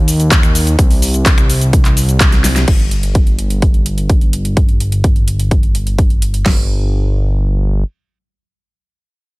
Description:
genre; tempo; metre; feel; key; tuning
EDM, festival progressive house; 127 BPM; 4/4; straight; unclear; A4 = 440 Hz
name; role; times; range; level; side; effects
fat analog bass; bass; 0.0-7.8 s; G1 to Eb2; -15 LUFS; equal; sidechain pumping
big-room dance drum kit; drums; 0.1-6.4 s; crash cymbal, finger snaps, handclaps, hi-hat, shaker, snare drum; -18 LUFS; equal; overdrive
big-room dance drum kit; drums; 0.3-6.6 s; crash cymbal, kick drum, snare drum; -12 LUFS; equal; overdrive
room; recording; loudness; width
digital ambience; none; -11 LUFS; side -22 dB against mid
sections
0.0-2.7 A section; 2.7-6.5 B section; 6.5-9.4 C section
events
drop 0.0-2.7; drum fill 2.3-2.7; filter sweep on analog synth bass 2.7-6.5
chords
none

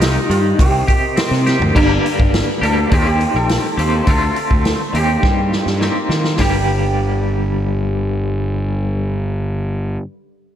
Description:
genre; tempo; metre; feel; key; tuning
psychedelic rock; 103 BPM; 4/4; straight; G minor; A4 = 440 Hz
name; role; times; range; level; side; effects
sitar; melody; 0.0-10.0 s; D4 to A4; -23 LUFS; right 1 dB; ping-pong delay
mellow tonewheel organ; sustained chords; 0.0-1.8 s; G4 to C6; -28 LUFS; right 4 dB; slow rotary speaker
twangy electric guitar; riff; 0.0-10.0 s; G2 to G4; -21 LUFS; left 2 dB; tremolo
fuzz picked electric bass; bass; 0.0-10.0 s; G1 to Eb3; -18 LUFS; equal; overdrive
vintage drum kit; drums; 0.0-6.5 s; crash cymbal, hi-hat, kick drum, snare drum, toms; -18 LUFS; equal; none
maracas; percussion; 0.0-1.6 s; none; -36 LUFS; right 14 dB; none
room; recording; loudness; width
moderate lush hall reverb, RT60 1.8 s, small room reverb; dreamy mix soaked in reverb; -14 LUFS; side -10 dB against mid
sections
0.0-1.8 A section; 1.8-6.4 B section; 6.4-8.7 C section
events
drum fill 1.5, 5.2-6.4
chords
0.0 Eb; 0.6 Cm7; 1.8 Gm; 2.9 Eb6; 4.1 Dm7; 4.9 Cm7/Eb; 6.4 Gm

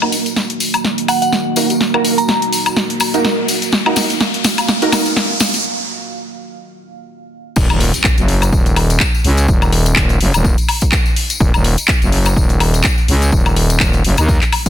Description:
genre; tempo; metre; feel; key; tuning
bass house; 125 BPM; 4/4; swing 56% on 16ths; Eb minor; A4 = 440 Hz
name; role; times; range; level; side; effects
deep dark ambient pad; sustained chords; 0.0-14.7 s; Bb3 to F5; -22 LUFS; right 3 dB; chorus, built-in reverb, sidechain pumping
orchestra-hit-like synth stab; stabs; 0.0-5.0 s; Bb3 to Bb4; -20 LUFS; right 3 dB; built-in reverb, phaser, cassette tape, sidechain pumping, digital delay
house drum kit; drums; 0.0-14.7 s; crash cymbal, handclaps, hi-hat, snare drum, woodblock; -17 LUFS; left 1 dB; soft clipping on snare
riser and impact; sound effects; 0.0-9.5 s; none; -24 LUFS; left 1 dB; none
tambourine; percussion; 0.1-14.7 s; none; -24 LUFS; left 4 dB; none
soft synth bell; melody; 1.1-2.4 s; Gb5 to Bb5; -19 LUFS; right 2 dB; chorus, digital delay
growling FM bass; bass; 7.6-14.7 s; Eb1 to Eb2; -14 LUFS; equal; overdrive, sidechain pumping
electronic kick drum; drums; 7.6-14.7 s; none; -15 LUFS; equal; none
room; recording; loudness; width
light reverb; dense, heavily limited modern master; -12 LUFS; side -10 dB against mid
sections
0.0-7.6 A section; 7.6-14.7 B section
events
build-up 0.0-7.6; drum fill 0.0-5.6; riser 0.0-5.6; filter sweep on synth stab 0.0-7.6; break 5.6-7.6; drop 7.6-14.7; impact 7.6-9.5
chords
0.0 Ebm

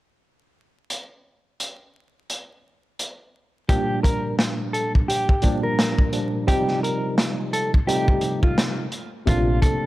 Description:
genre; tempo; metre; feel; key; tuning
hip hop, boom-bap hip-hop; 86 BPM; 4/4; swing 57% on 16ths; G minor; A4 = 439 Hz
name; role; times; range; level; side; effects
crunchy breakbeat drum kit; drums; 0.9-9.8 s; hi-hat, kick drum, snare drum; -22 LUFS; equal; none
mellow electric guitar; melody; 3.7-9.9 s; F4 to Bb4; -26 LUFS; equal; harmonic tremolo, high-pass filter, low-pass filter
tine electric piano; accompaniment; 3.7-9.9 s; Bb2 to Eb4; -25 LUFS; equal; overdrive, fast stereo tremolo, cassette tape, high-pass filter, low-pass filter
upright bass; bass; 9.3-9.6 s; Bb1; -23 LUFS; equal; none
room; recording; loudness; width
small room ambience; vinyl crackle; -20 LUFS; side -17 dB against mid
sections
0.9-3.7 A section; 3.7-9.9 B section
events
none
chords
0.9 N.C.; 3.7 Gm7; 6.5 F9; 9.3 Bbmaj9

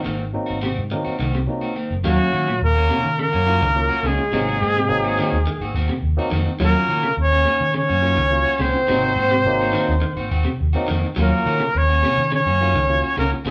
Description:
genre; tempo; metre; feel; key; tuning
afrobeat; 105 BPM; 4/4; straight; Eb dorian; A4 = 435 Hz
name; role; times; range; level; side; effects
clean electric guitar; stabs; 0.0-13.5 s; Eb3 to Gb4; -31 LUFS; equal; none
clean electric guitar; arpeggios; 0.1-13.5 s; Bb2 to Gb3; -29 LUFS; equal; spring reverb
fingered electric bass; bass; 0.1-13.5 s; Gb1 to Eb3; -25 LUFS; equal; none
barky tine electric piano; accompaniment; 0.3-13.5 s; Gb3 to F5; -29 LUFS; equal; overdrive
breathy trumpet; melody; 2.1-13.5 s; Gb4 to Db5; -23 LUFS; equal; none
clear trombone; second line; 2.1-13.5 s; Gb3 to Db4; -28 LUFS; equal; none
room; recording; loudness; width
wet studio reverb, RT60 0.6 s; band playing live in one room; -20 LUFS; mono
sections
0.0-2.1 A section; 2.1-13.5 B section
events
none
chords
0.0 Ab9; 2.1 Ebm7; 4.3 Ab9; 6.6 Ebm7; 8.9 Ab9; 11.2 Ebm7

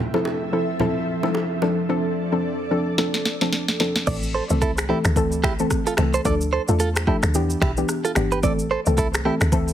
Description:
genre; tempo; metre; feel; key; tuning
afrobeats; 110 BPM; 4/4; swing 58% on 16ths; A minor; A4 = 440 Hz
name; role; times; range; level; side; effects
ethereal airy pad; sustained chords; 0.0-4.0 s; F3 to E5; -28 LUFS; equal; ensemble chorus, built-in reverb, tremolo
soft round pluck; accompaniment; 0.1-9.7 s; E3 to A4; -23 LUFS; left 1 dB; chorus, plate reverb
bongos and congas; percussion; 0.1-1.8 s; none; -28 LUFS; right 4 dB; none
afro-pop drum kit; drums; 3.0-9.7 s; crash cymbal, finger snaps, kick drum, rim click, shaker, snare drum; -24 LUFS; equal; none
direct-recorded clean electric guitar; riff; 4.1-9.3 s; E4 to D5; -26 LUFS; right 6 dB; tape echo
woody log drum bass; bass; 4.1-9.7 s; G1 to E2; -23 LUFS; equal; none
room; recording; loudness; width
moderate studio reverb, RT60 0.6 s; heavily compressed radio sound, multiband compression; -19 LUFS; side -11 dB against mid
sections
0.0-4.1 A section; 4.1-9.7 B section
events
drum fill 3.0-4.1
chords
0.0 Fmaj7; 1.6 Dm7; 4.1 Am; 6.3 Dm; 7.3 Em7; 8.4 Am

